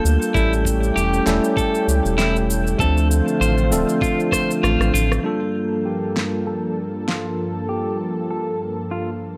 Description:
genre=sunset chillout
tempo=98 BPM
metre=4/4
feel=swing 54% on 16ths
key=G minor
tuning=A4 = 440 Hz
part: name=bell-like tine electric piano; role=accompaniment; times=0.0-9.4 s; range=F3 to A4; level=-25 LUFS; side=equal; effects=analog delay
part: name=lush unison pad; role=sustained chords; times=0.0-9.4 s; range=G2 to A4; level=-28 LUFS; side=equal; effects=chorus
part: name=clean electric guitar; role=arpeggios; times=0.0-9.1 s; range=E4 to C5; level=-28 LUFS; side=equal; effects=spring reverb, low-pass filter, analog delay
part: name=round analog bass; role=bass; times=0.0-5.2 s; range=D1 to D2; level=-22 LUFS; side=equal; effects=none
part: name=wind-like tuned noise texture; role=texture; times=0.0-5.3 s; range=G6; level=-38 LUFS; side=equal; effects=built-in reverb
part: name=electronic shaker, snare drum and rim click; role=drums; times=0.1-7.2 s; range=none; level=-29 LUFS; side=equal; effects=studio reverb
part: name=electronic kick drum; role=drums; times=0.3-4.5 s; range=none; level=-27 LUFS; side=equal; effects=studio reverb
room=light reverb, digital ambience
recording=dry, gritty hardware recording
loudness=-20 LUFS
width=mono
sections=0.0-5.2 A section; 5.2-9.4 B section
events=drum fill 4.3-5.2; filter sweep on clean electric guitar 5.2-9.4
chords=0.3 A7; 2.8 Dm7; 5.2 Gm9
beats=| 0.35 0.96 1.57 2.19 | 2.80 3.41 4.02 4.63 | 5.25 5.86 6.47 7.08 | 7.70 8.31 8.92

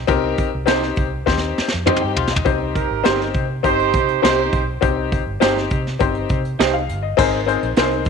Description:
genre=uptempo 1960s-style soul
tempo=102 BPM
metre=4/4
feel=straight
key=unclear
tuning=A4 = 441 Hz
part: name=vintage muted fingered electric bass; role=bass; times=0.0-8.1 s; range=G1 to C3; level=-25 LUFS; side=right 1 dB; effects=none
part: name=clear grand piano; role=accompaniment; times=0.1-8.1 s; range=C4 to F5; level=-20 LUFS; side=left 10 dB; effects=none
part: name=vintage brush drum kit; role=drums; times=0.1-8.1 s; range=crash cymbal, hi-hat, kick drum, snare drum, toms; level=-22 LUFS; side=right 1 dB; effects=none
part: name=electric guitar through a small old amp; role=stabs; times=0.7-7.9 s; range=Eb4 to C5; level=-23 LUFS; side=right 12 dB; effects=none
part: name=clean electric guitar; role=riff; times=1.9-2.6 s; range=Eb4 to G4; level=-27 LUFS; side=left 12 dB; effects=none
part: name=mellow horn section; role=second line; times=2.7-4.7 s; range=Eb4 to C5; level=-21 LUFS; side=right 14 dB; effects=none
room=light reverb, small room reverb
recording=1960s-style stereo with parts hard left and right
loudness=-16 LUFS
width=side -6 dB against mid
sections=0.0-2.5 A section; 2.5-7.2 B section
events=drum fill 1.3-2.5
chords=0.0 Cm; 7.2 Abadd9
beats=| 0.09 0.69 1.28 1.87 | 2.46 3.05 3.65 4.24 | 4.83 5.42 6.01 6.60 | 7.18 7.77

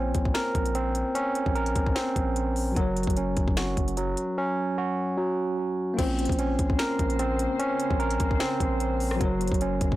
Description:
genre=hip hop, trap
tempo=149 BPM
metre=4/4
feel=half-time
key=Bb minor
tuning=A4 = 438 Hz
part: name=mellow tine electric piano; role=accompaniment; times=0.0-10.0 s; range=Gb3 to Db5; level=-35 LUFS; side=left 4 dB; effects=medium stereo tremolo
part: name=barky tine electric piano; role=arpeggios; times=0.0-10.0 s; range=Gb3 to Bb4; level=-27 LUFS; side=right 2 dB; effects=overdrive, auto-pan, tape echo
part: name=long sustained 808-style bass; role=bass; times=0.0-10.0 s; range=Gb1 to Bb1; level=-30 LUFS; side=left 1 dB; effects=none
part: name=trap drum kit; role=drums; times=0.1-10.0 s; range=crash cymbal, finger snaps, hi-hat, kick drum, rim click, snare drum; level=-28 LUFS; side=equal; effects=none
part: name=glassy FM pad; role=sustained chords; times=6.6-10.0 s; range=Db3 to C5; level=-36 LUFS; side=left 4 dB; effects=ensemble chorus, built-in reverb
room=little or no reverb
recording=blown-out, overdriven recording, overdrive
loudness=-24 LUFS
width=side -16 dB against mid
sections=0.0-6.0 A section; 6.0-10.0 B section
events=none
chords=0.0 Bbmadd9; 2.8 Gb; 6.0 Bbmadd9; 9.2 Gb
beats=0.35 0.75 | 1.15 1.56 1.96 2.36 | 2.76 3.17 3.57 3.97 | 4.38 4.78 5.18 5.58 | 5.99 6.39 6.79 7.19 | 7.60 8.00 8.40 8.80 | 9.21 9.61

